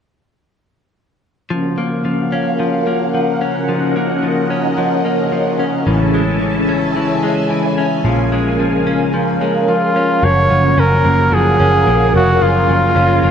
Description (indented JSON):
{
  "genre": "dream pop",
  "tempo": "110 BPM",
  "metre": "4/4",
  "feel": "straight",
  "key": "F# major",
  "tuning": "A4 = 440 Hz",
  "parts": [
    { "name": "string machine, cellos", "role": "sustained chords", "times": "1.5-13.3 s", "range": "C#4 to A5", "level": "-17 LUFS", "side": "equal", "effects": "phaser, ensemble chorus" },
    { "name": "direct-recorded clean electric guitar", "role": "arpeggios", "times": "1.5-13.3 s", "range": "E3 to C#4", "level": "-19 LUFS", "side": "left 2 dB", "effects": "wide subtle chorus, digital delay" },
    { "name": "vintage muted picked electric bass", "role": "bass", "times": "5.9-13.3 s", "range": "E#1 to A#1", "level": "-16 LUFS", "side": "equal", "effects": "none" },
    { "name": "clear flugelhorn", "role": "melody", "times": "9.7-13.3 s", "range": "E#4 to C#5", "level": "-14 LUFS", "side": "right 1 dB", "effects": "digital delay" }
  ],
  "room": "moderate plate reverb, RT60 2.7 s",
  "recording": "lossy compression artefacts",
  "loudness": "-13 LUFS",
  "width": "side -8 dB against mid",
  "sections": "1.5-10.2 A section; 10.2-13.3 B section",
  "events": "none",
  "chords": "1.5 F#maj7; 5.9 Amaj7; 8.1 A#m7; 10.2 F#maj7"
}